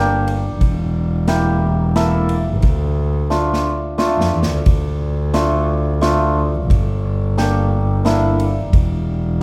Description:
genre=klezmer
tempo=89 BPM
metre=3/4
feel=straight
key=D minor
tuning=A4 = 440 Hz
part: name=hammered dulcimer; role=accompaniment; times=0.0-8.4 s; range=A3 to A4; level=-23 LUFS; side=equal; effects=none
part: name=clear double bass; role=bass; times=0.0-9.4 s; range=E1 to F2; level=-20 LUFS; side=equal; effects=none
part: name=street-band drum kit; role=drums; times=0.3-8.9 s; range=kick drum, ride cymbal, snare drum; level=-22 LUFS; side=equal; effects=none
room=light reverb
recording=none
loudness=-17 LUFS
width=mono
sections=0.0-4.7 A section; 4.7-9.4 A section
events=drum fill 3.3-4.7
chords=0.0 Gm; 0.6 Edim; 2.6 Dm; 6.7 Gm; 8.7 N.C.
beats=| 0.61 1.28 1.96 | 2.64 3.31 3.99 | 4.67 5.34 6.02 | 6.70 7.38 8.05 | 8.73 9.41

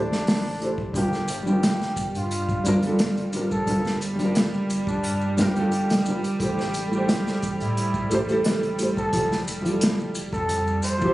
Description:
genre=trip hop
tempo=88 BPM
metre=4/4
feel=straight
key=G dorian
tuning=A4 = 441 Hz
part: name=trumpet with bucket mute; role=melody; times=0.0-11.1 s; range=D4 to C5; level=-30 LUFS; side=equal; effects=tape echo
part: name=felt-muted upright piano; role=accompaniment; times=0.0-11.1 s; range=F3 to C5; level=-25 LUFS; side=equal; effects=tremolo, tape echo
part: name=soft dub sub bass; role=bass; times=0.0-10.8 s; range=F1 to A2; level=-32 LUFS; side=equal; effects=tube saturation
part: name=unplugged drum kit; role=drums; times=0.1-11.1 s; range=hi-hat, kick drum, snare drum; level=-27 LUFS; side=equal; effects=none
part: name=dark studio string section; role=sustained chords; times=0.9-11.1 s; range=G3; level=-29 LUFS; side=right 2 dB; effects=stereo widening
part: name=maracas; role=percussion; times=1.0-11.1 s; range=none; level=-40 LUFS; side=left 2 dB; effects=none
room=light reverb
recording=recorded on a phone in the room, club reverb, compression, nothing above 10.9 kHz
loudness=-21 LUFS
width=side -16 dB against mid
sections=0.0-11.1 A section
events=none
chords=0.0 Am7; 0.9 Gm7; 6.4 Am7; 9.1 Fmaj9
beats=0.27 | 0.95 1.63 2.31 2.99 | 3.67 4.36 5.04 5.72 | 6.40 7.08 7.77 8.45 | 9.13 9.81 10.49

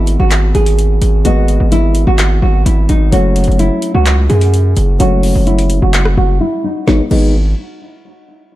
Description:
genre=hip hop, trap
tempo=128 BPM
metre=4/4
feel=half-time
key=G# phrygian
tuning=A4 = 439 Hz
part: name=nylon-string guitar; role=melody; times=0.0-7.3 s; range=D#4 to G#4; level=-17 LUFS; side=right 1 dB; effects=low-pass filter, tape echo
part: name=dark grand piano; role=accompaniment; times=0.0-7.3 s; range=F#3 to D#5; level=-19 LUFS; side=left 2 dB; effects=low-pass filter
part: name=distorted 808-style bass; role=bass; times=0.0-7.5 s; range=F#1 to F#2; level=-11 LUFS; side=equal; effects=distortion
part: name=trap drum kit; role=drums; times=0.1-7.2 s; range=crash cymbal, handclaps, hi-hat, rim click, snare drum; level=-20 LUFS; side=left 1 dB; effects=none
room=small room reverb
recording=dark, warm production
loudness=-10 LUFS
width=side -15 dB against mid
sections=0.0-6.9 A section; 6.9-8.6 B section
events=filter sweep 0.0-6.9; break 6.4-6.9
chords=0.0 G#m; 3.1 F#m; 6.9 G#m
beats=0.31 0.78 | 1.25 1.72 2.19 2.66 | 3.12 3.59 4.06 4.53 | 5.00 5.47 5.94 6.41 | 6.88 7.34

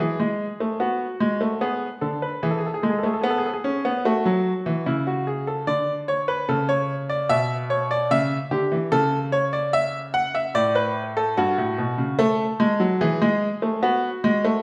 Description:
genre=classical, baroque-style two-part invention for grand piano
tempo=74 BPM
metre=4/4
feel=straight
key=unclear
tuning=A4 = 439 Hz
part: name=bright baby grand piano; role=solo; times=0.0-14.6 s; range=G2 to F#5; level=-23 LUFS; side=equal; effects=none
room=wet recital hall reverb, RT60 1.4 s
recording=none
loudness=-23 LUFS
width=mono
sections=0.0-14.6 A section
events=none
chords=0.0 A5; 0.8 Bm; 2.4 E; 4.0 A; 5.7 D5; 7.3 Em/B; 8.9 A/C#; 10.5 D/A; 12.2 A5; 13.8 B5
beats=0.81 1.61 | 2.42 3.24 4.05 4.86 | 5.67 6.48 7.29 8.11 | 8.92 9.73 10.55 11.37 | 12.18 13.01 13.83

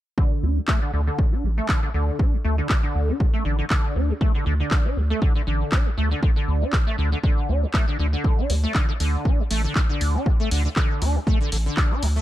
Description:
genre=acid house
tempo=119 BPM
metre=4/4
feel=swing 55% on 16ths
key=D minor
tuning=A4 = 440 Hz
part: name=liquid acid bass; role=riff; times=0.2-12.2 s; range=D3 to D4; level=-27 LUFS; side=equal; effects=tube saturation, ensemble chorus, sidechain pumping, ping-pong delay
part: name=electronic kick drum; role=drums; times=0.2-11.9 s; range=none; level=-21 LUFS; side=equal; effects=none
part: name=saturated sub bass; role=bass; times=0.4-12.2 s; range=A1 to D2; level=-22 LUFS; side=equal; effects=sidechain pumping
part: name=punchy analog drum machine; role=drums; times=0.7-12.1 s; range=handclaps, hi-hat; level=-29 LUFS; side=equal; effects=none
room=digital ambience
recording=none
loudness=-20 LUFS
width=side -14 dB against mid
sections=0.2-12.2 A section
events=none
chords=0.2 D5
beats=| 0.18 0.68 1.19 1.69 | 2.19 2.70 3.20 3.71 | 4.21 4.72 5.22 5.72 | 6.23 6.73 7.24 7.74 | 8.24 8.75 9.25 9.76 | 10.26 10.77 11.27 11.77

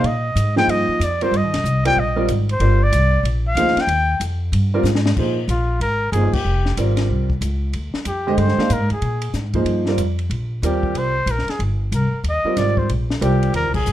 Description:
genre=modal jazz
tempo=187 BPM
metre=4/4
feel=swing 63% on 8ths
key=Bb mixolydian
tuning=A4 = 440 Hz
part: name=breathy trumpet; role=melody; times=0.0-13.9 s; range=F4 to G5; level=-21 LUFS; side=left 1 dB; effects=none
part: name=clear concert grand piano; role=accompaniment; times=0.0-13.7 s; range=D3 to F5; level=-22 LUFS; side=right 2 dB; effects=none
part: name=upright bass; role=bass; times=0.0-13.9 s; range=F1 to Bb2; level=-20 LUFS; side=equal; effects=none
part: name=compact cocktail drum kit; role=drums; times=0.0-13.9 s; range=crash cymbal, hi-hat, kick drum, ride cymbal, snare drum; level=-27 LUFS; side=left 2 dB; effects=none
room=light reverb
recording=dark, warm production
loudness=-17 LUFS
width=side -13 dB against mid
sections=0.0-5.2 A section; 5.2-13.9 B section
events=trumpet solo 0.0-5.2; drum fill 4.8-5.2; band accent 6.3, 13.7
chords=0.0 Bb13; 10.3 Eb6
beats=| 0.04 0.36 0.68 1.00 | 1.32 1.64 1.96 2.28 | 2.60 2.92 3.25 3.57 | 3.89 4.21 4.53 4.85 | 5.17 5.49 5.81 6.13 | 6.45 6.78 7.10 7.42 | 7.74 8.06 8.38 8.70 | 9.03 9.35 9.67 9.99 | 10.31 10.63 10.96 11.28 | 11.60 11.92 12.24 12.57 | 12.89 13.21 13.54 13.86

